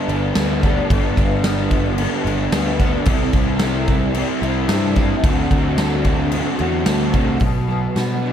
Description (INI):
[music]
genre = rock, shoegaze and dream pop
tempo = 111 BPM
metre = 4/4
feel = straight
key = G major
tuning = A4 = 440 Hz
[part]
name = picked twelve-string acoustic guitar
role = arpeggios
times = 0.0-8.3 s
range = E3 to A4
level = -31 LUFS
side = right 12 dB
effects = ensemble chorus, analog delay
[part]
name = raw garage guitar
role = riff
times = 0.0-8.3 s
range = G2 to F#4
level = -23 LUFS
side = left 12 dB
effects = overdrive, analog chorus
[part]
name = raw garage guitar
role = riff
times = 0.0-8.3 s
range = G2 to F#4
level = -24 LUFS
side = right 12 dB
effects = overdrive, reverse reverb
[part]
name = fuzz picked electric bass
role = bass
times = 0.1-8.3 s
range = G1 to B2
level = -22 LUFS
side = equal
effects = overdrive
[part]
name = huge arena drum kit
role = drums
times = 0.1-8.1 s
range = crash cymbal, hi-hat, kick drum, snare drum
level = -20 LUFS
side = equal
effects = none
[sound]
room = light reverb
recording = none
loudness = -16 LUFS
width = side -9 dB against mid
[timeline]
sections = 0.0-7.4 A section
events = none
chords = 0.0 Gadd9; 3.1 C6; 5.2 D7; 7.4 Bm